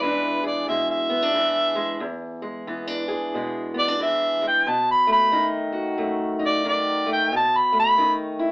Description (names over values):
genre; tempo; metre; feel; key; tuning
acoustic country blues, solo or duo; 90 BPM; 4/4; swing 61% on 8ths; unclear; A4 = 441 Hz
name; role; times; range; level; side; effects
mellow harmonica; melody; 0.0-8.1 s; B4 to B5; -19 LUFS; equal; none
fingerpicked steel-string acoustic guitar; accompaniment; 0.0-8.5 s; E2 to G#4; -26 LUFS; equal; none
room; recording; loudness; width
moderate studio ambience, RT60 0.5 s; band playing live in one room, AM radio sound; -19 LUFS; side -24 dB against mid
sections
0.0-8.5 A section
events
harmonica solo 0.0-8.5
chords
0.0 E7; 4.7 B7